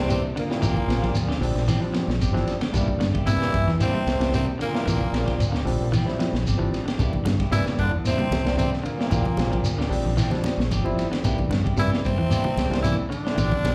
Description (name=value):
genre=afrobeat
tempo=113 BPM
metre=4/4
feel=straight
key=C mixolydian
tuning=A4 = 439 Hz
part: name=growling tenor saxophone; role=melody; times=0.0-13.7 s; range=Bb3 to E4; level=-31 LUFS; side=equal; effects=slapback echo
part: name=clear trombone section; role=second line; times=0.0-13.7 s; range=Bb2 to E3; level=-37 LUFS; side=equal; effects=none
part: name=trombone with plunger mute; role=second line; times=0.0-13.7 s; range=Bb2 to E3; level=-36 LUFS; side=equal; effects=slapback echo
part: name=barky tine electric piano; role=accompaniment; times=0.0-13.7 s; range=E3 to E4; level=-32 LUFS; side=equal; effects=overdrive, slapback echo
part: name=deep dub fingered electric bass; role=bass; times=0.0-13.7 s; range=G1 to G2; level=-28 LUFS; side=equal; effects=none
part: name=semi-hollow electric guitar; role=arpeggios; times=0.1-13.5 s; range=C3 to G3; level=-32 LUFS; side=equal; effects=slapback echo
part: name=semi-hollow electric guitar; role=stabs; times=0.1-13.7 s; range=E3 to G4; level=-37 LUFS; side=equal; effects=subtle chorus, slapback echo
part: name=crunchy breakbeat drum kit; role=drums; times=0.1-13.7 s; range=hi-hat, kick drum, ride cymbal, snare drum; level=-31 LUFS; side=equal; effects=none
part: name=shekere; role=percussion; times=0.1-13.7 s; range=none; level=-31 LUFS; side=equal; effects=none
part: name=congas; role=percussion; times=7.0-13.7 s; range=none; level=-33 LUFS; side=equal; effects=none
room=light reverb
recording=live gig heard through the venue's PA, club reverb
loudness=-23 LUFS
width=mono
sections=0.0-13.7 A section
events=none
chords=0.0 C7; 0.6 Bb69; 2.7 C7; 4.9 Bb69; 7.0 C7; 9.1 Bb69; 11.2 C7